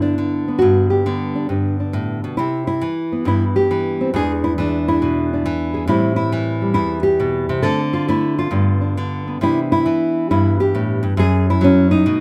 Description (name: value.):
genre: solo jazz.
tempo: 136 BPM.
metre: 4/4.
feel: swing 66% on 8ths, rubato.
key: C major.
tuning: A4 = 440 Hz.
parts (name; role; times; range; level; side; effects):
nylon-string guitar; solo; 0.0-12.2 s; E2 to A4; -18 LUFS; equal; none.
room: moderate large studio reverb, RT60 0.9 s.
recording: none.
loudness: -18 LUFS.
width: mono.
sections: 0.0-2.4 A section; 2.4-12.2 B section.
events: none.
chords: 0.0 G; 2.4 Cmaj7; 4.1 E7; 5.9 Am7; 7.6 D5; 8.5 G7; 9.4 Cmaj9; 11.2 N.C..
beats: 0.18 | 0.61 1.05 1.49 1.94 | 2.38 2.83 3.27 3.71 | 4.14 4.58 5.01 5.45 | 5.88 6.31 6.75 7.19 | 7.63 8.07 8.51 8.96 | 9.40 9.84 10.29 10.73 | 11.17 11.61 12.05.